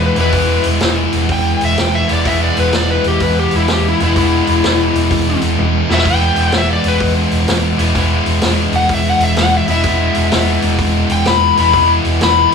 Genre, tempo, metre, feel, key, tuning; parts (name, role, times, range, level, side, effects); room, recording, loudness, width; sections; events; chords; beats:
blues rock power trio and southern rock; 126 BPM; 4/4; swing 65% on 8ths; E major; A4 = 441 Hz
overdriven slide guitar; melody; 0.0-12.5 s; E4 to B5; -16 LUFS; left 4 dB
thick fuzz guitar; riff; 0.0-12.5 s; E3 to E4; -15 LUFS; left 1 dB; distortion
picked electric bass; bass; 0.0-12.5 s; E1; -18 LUFS; right 1 dB
vintage drum kit; drums; 0.2-12.5 s; hi-hat, kick drum, snare drum, toms; -20 LUFS; equal
moderate studio reverb, RT60 0.5 s; small room ambience; -11 LUFS; side -6 dB against mid
0.0-12.5 A section
electric slide guitar solo 0.0-12.5; drum fill 5.6-6.1
0.0 E
| 0.34 0.82 1.29 1.77 | 2.25 2.73 3.20 3.68 | 4.16 4.63 5.11 5.58 | 6.06 6.53 7.01 7.48 | 7.96 8.43 8.90 9.38 | 9.85 10.32 10.80 11.27 | 11.74 12.21